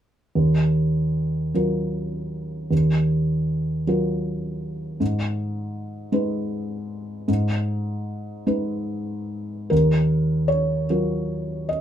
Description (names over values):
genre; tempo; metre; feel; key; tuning
neoclassical minimalist piano; 46-54 BPM (dotted quarters); 6/8; rubato; Eb minor; A4 = 442 Hz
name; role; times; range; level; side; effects
felt-muted upright piano; solo; 0.4-11.8 s; Eb2 to Eb5; -21 LUFS; equal; none
room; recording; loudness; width
moderate small room reverb, RT60 0.5 s; minimal, uncompressed stereo recording; -21 LUFS; side -10 dB against mid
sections
0.4-9.7 A section; 9.7-11.8 B section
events
none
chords
0.4 Ebmadd9; 5.0 Abm; 9.7 Ebmadd9